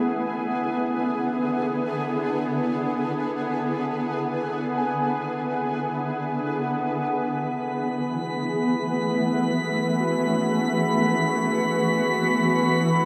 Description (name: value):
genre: ambient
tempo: free time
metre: none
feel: none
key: F# minor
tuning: A4 = 442 Hz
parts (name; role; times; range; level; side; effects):
- shimmering ambient pad; sustained chords; 0.0-13.1 s; D3 to G#4; -26 LUFS; equal; chorus, built-in reverb
- muted felt-like synth keys; arpeggios; 0.0-13.1 s; B3 to G#5; -34 LUFS; equal; chorus, tape echo
- organ-like drone; drone; 9.7-13.1 s; none; barely audible; none; none
- drifting glass-harmonics texture; texture; 7.7-13.1 s; B5 to B6; -30 LUFS; equal; chorus, built-in reverb
room: wet huge ambient reverb, RT60 7.0 s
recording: none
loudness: -25 LUFS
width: mono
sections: 0.0-7.0 A section; 7.0-13.1 B section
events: none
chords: 0.0 E7; 7.0 F#m11